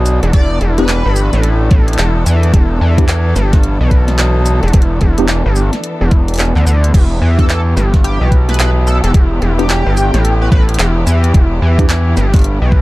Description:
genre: glitch hop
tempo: 109 BPM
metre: 4/4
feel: swing 62% on 16ths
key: E minor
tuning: A4 = 443 Hz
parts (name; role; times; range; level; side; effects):
- rich symphonic string section; sustained chords; 0.0-12.8 s; E3 to A4; -21 LUFS; left 1 dB; vintage 12-bit sampler grit, sidechain pumping
- gritty driven synth bass; bass; 0.0-12.8 s; E1 to E2; -12 LUFS; equal; none
- pop drum kit; drums; 0.1-12.6 s; crash cymbal, handclaps, hi-hat, shaker, snare drum; -20 LUFS; equal; overdrive
- sync lead; melody; 0.3-1.5, 7.4-10.6 s; G4 to D5; -22 LUFS; equal; analog chorus, dub echo
- electronic kick drum; drums; 0.3-12.8 s; none; -10 LUFS; equal; overdrive
- tine electric piano; stabs; 0.8-11.8 s; B3 to G4; -21 LUFS; equal; none
room: digital ambience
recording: dark, warm production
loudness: -10 LUFS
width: side -19 dB against mid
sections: 0.0-12.8 A section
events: none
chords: 0.0 Em7

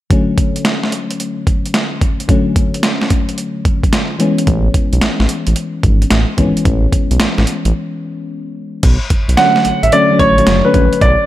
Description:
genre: R&B, new jack swing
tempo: 110 BPM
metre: 4/4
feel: swing 67% on 16ths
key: unclear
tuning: A4 = 440 Hz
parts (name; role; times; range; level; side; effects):
- mellow FM electric piano; accompaniment; 0.1-11.3 s; D3 to C#4; -18 LUFS; left 3 dB; chorus
- dusty soul sampler-style drum kit; drums; 0.1-11.2 s; crash cymbal, hi-hat, kick drum, snare drum; -15 LUFS; equal; overdrive, gated reverb
- round analog bass; bass; 4.5-11.2 s; F#1 to B1; -14 LUFS; equal; none
- warm concert grand piano; melody; 9.4-11.3 s; B4 to F#5; -11 LUFS; right 2 dB; none
room: light reverb, digital ambience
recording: none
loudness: -11 LUFS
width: side -14 dB against mid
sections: 0.1-8.8 A section; 8.8-11.3 B section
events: break 7.7-8.8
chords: 0.1 Dmaj7; 4.2 Amaj9; 8.8 Bm7

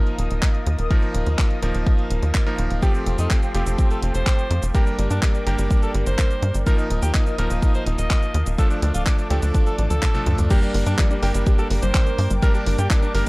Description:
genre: italo disco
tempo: 125 BPM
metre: 4/4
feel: straight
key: G minor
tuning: A4 = 441 Hz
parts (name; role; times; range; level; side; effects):
- warm analog pad; sustained chords; 0.0-13.3 s; A4 to Eb6; -33 LUFS; left 1 dB; chorus, phaser
- bright electric grand piano; stabs; 0.0-13.3 s; F3 to Bb4; -28 LUFS; right 1 dB; none
- house drum kit; drums; 0.1-13.3 s; cabasa, crash cymbal, handclaps, hi-hat, toms; -29 LUFS; equal; none
- tight sequencer bass; bass; 0.2-13.3 s; D1 to G2; -21 LUFS; equal; none
- electronic kick drum; drums; 0.4-13.0 s; none; -18 LUFS; equal; none
- edgy alto saxophone; melody; 2.8-13.3 s; G3 to Eb5; -29 LUFS; equal; analog delay
- wide unison pluck; arpeggios; 10.5-13.3 s; F3 to G4; -32 LUFS; left 2 dB; analog delay
room: digital ambience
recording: dry, gritty hardware recording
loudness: -18 LUFS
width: side -23 dB against mid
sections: 0.0-10.5 A section; 10.5-13.3 B section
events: drum fill 9.8-10.5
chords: 0.0 Ebsus2; 2.8 Fadd9; 4.7 Gm; 6.7 Ebsus2; 8.6 Dm; 10.5 Gm

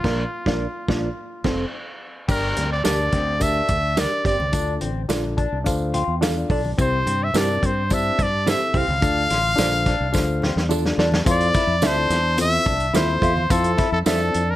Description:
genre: uptempo 1960s-style soul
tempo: 107 BPM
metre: 4/4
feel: straight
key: F major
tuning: A4 = 439 Hz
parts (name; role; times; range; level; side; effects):
- brilliant trumpet; melody; 0.0-14.6 s; F4 to F5; -23 LUFS; equal; none
- reed electric piano; accompaniment; 0.0-14.4 s; G2 to A5; -27 LUFS; left 3 dB; overdrive
- mellow electric guitar; stabs; 0.0-14.2 s; C4 to E5; -27 LUFS; right 7 dB; none
- fingered electric bass; bass; 0.0-14.6 s; F1 to G2; -25 LUFS; equal; none
- warm soul drum kit; drums; 0.0-14.5 s; crash cymbal, hi-hat, kick drum, snare drum; -24 LUFS; equal; none
- electric guitar through a small old amp; riff; 2.3-14.6 s; C4 to G4; -28 LUFS; left 5 dB; none
- congas; percussion; 2.3-14.2 s; none; -34 LUFS; right 2 dB; none
- tambourine; percussion; 2.3-14.2 s; none; -34 LUFS; right 6 dB; none
room: studio reverb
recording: none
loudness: -18 LUFS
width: side -14 dB against mid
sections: 0.0-2.3 A section; 2.3-11.3 B section; 11.3-14.6 C section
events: band accent 0.0-2.3; reed electric piano fill 1.4-2.3, 5.1-6.8; drum fill 10.1-11.3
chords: 0.0 Bb; 1.2 F; 1.7 N.C.; 2.3 Gm; 4.5 Dm; 6.8 C; 9.0 Dm; 11.3 Fmaj7

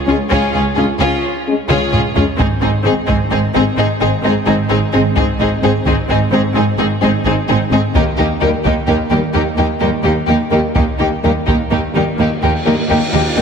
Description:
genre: cinematic, epic orchestral film score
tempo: 86 BPM (dotted quarters)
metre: 12/8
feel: straight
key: unclear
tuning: A4 = 440 Hz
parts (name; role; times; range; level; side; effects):
- rich symphonic violin section; melody; 0.1-13.4 s; G4 to Ab4; -21 LUFS; left 3 dB; none
- rich symphonic violin section; second line; 0.1-13.4 s; Eb4 to F4; -21 LUFS; left 3 dB; none
- rich symphonic viola section; accompaniment; 0.1-13.4 s; Bb3 to Db4; -22 LUFS; right 1 dB; none
- dark French horn section; sustained chords; 0.1-13.4 s; G3 to Db4; -21 LUFS; left 4 dB; none
- clear symphonic double bass section; bass; 0.1-13.4 s; Ab1 to Eb2; -19 LUFS; right 3 dB; none
- rich symphonic cello section; bass; 0.1-13.4 s; Db2 to Ab2; -20 LUFS; right 3 dB; none
- solo taiko drums; drums; 0.3-11.9 s; none; -20 LUFS; equal; none
- cymbal swell; sound effects; 12.1-13.4 s; none; -25 LUFS; right 1 dB; none
room: moderate scoring stage reverb, RT60 2.0 s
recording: heavily compressed radio sound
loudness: -12 LUFS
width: side -6 dB against mid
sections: 0.0-13.4 A section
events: drum fill 1.7-2.4; cymbal swell 12.1-13.4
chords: 0.0 Db; 2.4 Ab; 8.0 Eb

